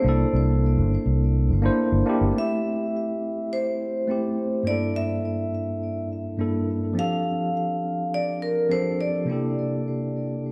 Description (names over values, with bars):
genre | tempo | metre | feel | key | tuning
sunset chillout | 104 BPM | 4/4 | straight | unclear | A4 = 440 Hz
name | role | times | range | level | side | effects
vibraphone with medium hard mallets | melody | 0.0-9.8 s | Bb4 to F5 | -30 LUFS | equal | delay
tine electric piano | accompaniment | 0.0-10.5 s | G2 to C5 | -28 LUFS | equal | delay
fingered electric bass | bass | 0.0-2.3 s | G1 to C2 | -23 LUFS | equal | none
room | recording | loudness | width
wet recital hall reverb, RT60 1.5 s, small room ambience | dark, warm production | -24 LUFS | mono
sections
0.0-2.4 A section; 2.4-10.5 B section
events
none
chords
0.1 C13; 2.4 Am7; 4.7 Gm69; 7.0 F69; 9.3 C13